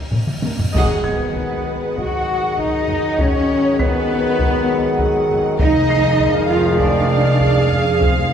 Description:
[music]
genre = cinematic, suspense film score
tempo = 99 BPM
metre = 4/4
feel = straight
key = unclear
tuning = A4 = 442 Hz
[part]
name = cymbal swell and impact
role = sound effects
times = 0.0-3.2 s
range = none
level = -28 LUFS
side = equal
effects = none
[part]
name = felt-muted upright piano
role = texture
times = 0.0-8.3 s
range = G#6 to C7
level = -35 LUFS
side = left 1 dB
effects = none
[part]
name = warm chamber violin section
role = melody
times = 0.1-8.3 s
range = Bb4 to F#5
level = -31 LUFS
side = equal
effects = none
[part]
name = warm chamber violin section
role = second line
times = 0.1-8.3 s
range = G4 to F#5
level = -26 LUFS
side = equal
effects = none
[part]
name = warm chamber viola section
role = accompaniment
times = 0.1-8.3 s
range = Db4 to F5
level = -24 LUFS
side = right 4 dB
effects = none
[part]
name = dark chamber cello section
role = bass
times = 0.1-8.3 s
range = Eb2 to F#4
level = -21 LUFS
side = equal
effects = none
[part]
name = rich symphonic double bass section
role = bass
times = 0.1-8.3 s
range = F1 to Eb2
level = -23 LUFS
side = right 1 dB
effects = none
[part]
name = taiko ensemble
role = drums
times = 0.1-8.3 s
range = none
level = -22 LUFS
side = left 1 dB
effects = none
[part]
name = dark French horn section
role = sustained chords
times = 0.7-8.3 s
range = G#3 to Ab4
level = -25 LUFS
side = left 2 dB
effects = none
[part]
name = warm trombone section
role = sustained chords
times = 0.7-8.3 s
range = D#3 to F#3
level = -25 LUFS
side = right 1 dB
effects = none
[part]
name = dark clarinet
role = second line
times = 1.1-8.3 s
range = B4 to F#5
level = -26 LUFS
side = left 2 dB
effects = none
[sound]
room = wet scoring stage reverb, RT60 1.9 s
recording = heard from further back in the room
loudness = -15 LUFS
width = side -8 dB against mid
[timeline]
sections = 0.7-8.3 A section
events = cymbal swell 0.0-0.7; drum fill 0.1-0.7; band accent 0.7-1.4; impact 0.7-3.2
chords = 0.0 Eb7; 0.7 G#m7; 5.6 Fm7

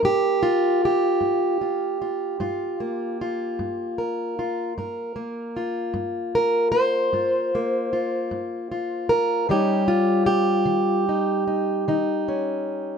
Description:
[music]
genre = acoustic country blues, solo or duo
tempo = 51 BPM (dotted quarters)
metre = 12/8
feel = straight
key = G minor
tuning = A4 = 441 Hz
[part]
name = fingerpicked plugged-in steel-string acoustic guitar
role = solo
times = 0.0-13.0 s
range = G2 to C5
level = -21 LUFS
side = equal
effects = none
[sound]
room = moderate studio reverb, RT60 0.8 s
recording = none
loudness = -21 LUFS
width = side -6 dB against mid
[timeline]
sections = 0.0-13.0 A section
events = none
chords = 0.0 Gm7; 9.5 Eb7

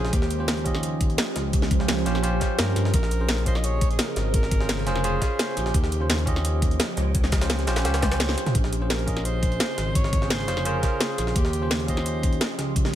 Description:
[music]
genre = liquid drum and bass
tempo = 171 BPM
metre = 4/4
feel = straight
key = unclear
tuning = A4 = 440 Hz
[part]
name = clear alto saxophone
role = melody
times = 0.0-6.3, 8.9-12.5 s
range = G4 to Eb5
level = -32 LUFS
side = equal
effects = tape echo
[part]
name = bell-like tine electric piano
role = accompaniment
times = 0.0-12.9 s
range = Db4 to Eb5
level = -31 LUFS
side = right 1 dB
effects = tape echo
[part]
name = glassy FM pad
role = sustained chords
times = 0.0-12.9 s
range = Db3 to C6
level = -32 LUFS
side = right 2 dB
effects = ensemble chorus, built-in reverb, phaser, sidechain pumping
[part]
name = smooth gliding synth bass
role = bass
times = 0.0-12.9 s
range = F1 to G2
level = -26 LUFS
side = equal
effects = none
[part]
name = jungle sampler-style drum kit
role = drums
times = 0.0-12.9 s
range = hi-hat, snare drum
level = -32 LUFS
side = equal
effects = high-pass filter on hats, high-pass filter on snare, high-pass filter on room
[part]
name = drum and bass drum kit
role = drums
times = 0.1-12.9 s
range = hi-hat, snare drum, toms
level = -28 LUFS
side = equal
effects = none
[part]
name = electronic kick drum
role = drums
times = 0.1-12.8 s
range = none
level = -23 LUFS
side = equal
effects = none
[sound]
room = little or no reverb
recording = none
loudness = -21 LUFS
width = side -12 dB against mid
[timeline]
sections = 0.0-12.9 A section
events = drum fill 8.0-8.6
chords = 0.1 Eb13; 2.9 Bbm9; 5.7 Eb13; 8.6 Bbm9; 11.4 Eb13

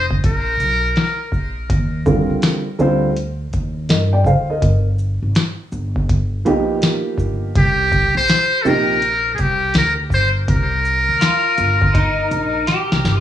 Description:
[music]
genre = hip hop, jazz-hop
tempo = 82 BPM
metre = 4/4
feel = swing 65% on 16ths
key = C minor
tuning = A4 = 439 Hz
[part]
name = trumpet with metal mute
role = melody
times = 0.0-1.3, 7.6-12.6 s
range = G4 to C5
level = -18 LUFS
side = left 1 dB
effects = plate reverb, tape echo
[part]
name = upright bass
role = bass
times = 0.0-13.2 s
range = F1 to G2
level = -20 LUFS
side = equal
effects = none
[part]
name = booming analog drum machine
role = drums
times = 0.1-13.2 s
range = hi-hat, kick drum, shaker, snare drum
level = -19 LUFS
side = equal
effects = overdrive, cassette tape
[part]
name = dark baby grand piano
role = accompaniment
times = 2.1-8.9 s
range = C3 to G5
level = -18 LUFS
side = right 2 dB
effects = cassette tape, plate reverb
[part]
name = electric guitar at the edge of break-up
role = second line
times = 11.2-13.2 s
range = Eb4 to G4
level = -20 LUFS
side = equal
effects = ensemble chorus, cassette tape, plate reverb, tape echo
[sound]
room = moderate studio reverb, RT60 0.6 s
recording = home recording on cassette, studio reverb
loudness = -15 LUFS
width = side -11 dB against mid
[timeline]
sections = 0.0-13.2 A section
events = break 0.0-1.7; drum fill 12.7-13.2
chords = 0.2 N.C.; 1.7 Ebmaj7; 4.6 G7alt; 7.6 C7(no3)

